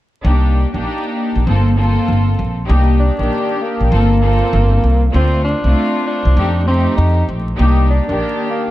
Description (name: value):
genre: hip hop, boom-bap hip-hop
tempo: 98 BPM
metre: 4/4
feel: swing 63% on 16ths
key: unclear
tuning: A4 = 438 Hz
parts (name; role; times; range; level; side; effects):
- rich studio string section; accompaniment; 0.2-8.7 s; Eb3 to A4; -18 LUFS; left 1 dB; high-pass filter, low-pass filter
- upright bass; bass; 0.2-8.2 s; G1 to F2; -14 LUFS; equal; none
- breathy tenor saxophone; melody; 3.0-8.7 s; Bb3 to Eb4; -20 LUFS; right 1 dB; high-pass filter, low-pass filter, digital delay
room: small room ambience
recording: dark, warm production, vinyl crackle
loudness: -12 LUFS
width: side -15 dB against mid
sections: 0.2-2.7 A section; 2.7-8.7 B section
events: none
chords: 0.2 Cm9; 1.5 Gm11; 2.7 Cm9; 3.9 Gm11; 5.1 Dm7; 6.4 F7; 7.6 Cm9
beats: | 0.24 0.86 1.47 2.08 | 2.69 3.31 3.92 4.53 | 5.14 5.76 6.37 6.98 | 7.59 8.21